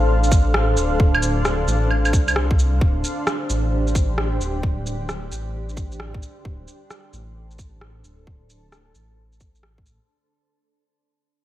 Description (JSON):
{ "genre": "future garage", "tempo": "132 BPM", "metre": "4/4", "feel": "swing 65% on 16ths", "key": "unclear", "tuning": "A4 = 438 Hz", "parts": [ { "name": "granular cloud pad", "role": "sustained chords", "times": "0.0-10.1 s", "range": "D4 to F5", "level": "-25 LUFS", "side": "equal", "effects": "built-in reverb, sidechain pumping" }, { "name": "dark detuned saw bass", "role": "bass", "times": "0.0-10.0 s", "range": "D1 to C2", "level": "-22 LUFS", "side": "equal", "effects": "sidechain pumping" }, { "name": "electronic shaker, rim click and claves", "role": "drums", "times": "0.2-10.0 s", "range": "none", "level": "-25 LUFS", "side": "right 1 dB", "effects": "studio reverb" }, { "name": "electronic kick drum", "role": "drums", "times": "0.3-9.8 s", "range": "none", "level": "-19 LUFS", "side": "equal", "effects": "studio reverb" } ], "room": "light reverb", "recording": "none", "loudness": "-18 LUFS", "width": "side -14 dB against mid", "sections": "0.0-10.1 A section", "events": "fade-out 0.0-10.1", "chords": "0.0 Dm7; 2.8 Csus2/D" }